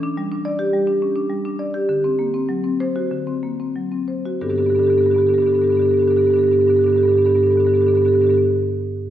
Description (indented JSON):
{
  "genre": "classical, contemporary piece for solo marimba",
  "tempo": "88-108 BPM",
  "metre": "4/4",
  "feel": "rubato",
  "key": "G major",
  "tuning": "A4 = 441 Hz",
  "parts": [
    { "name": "marimba with medium hard mallets", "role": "solo", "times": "0.0-8.4 s", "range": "G2 to D5", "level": "-16 LUFS", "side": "equal", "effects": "none" }
  ],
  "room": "wet concert hall reverb, RT60 1.7 s",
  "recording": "heard from further back in the room",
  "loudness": "-16 LUFS",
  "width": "side -11 dB against mid",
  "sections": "0.0-4.4 A section; 4.4-7.1 B section",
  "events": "slowing down 0.0-4.4",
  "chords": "0.0 Em7; 1.9 Daug7; 4.4 Gadd9"
}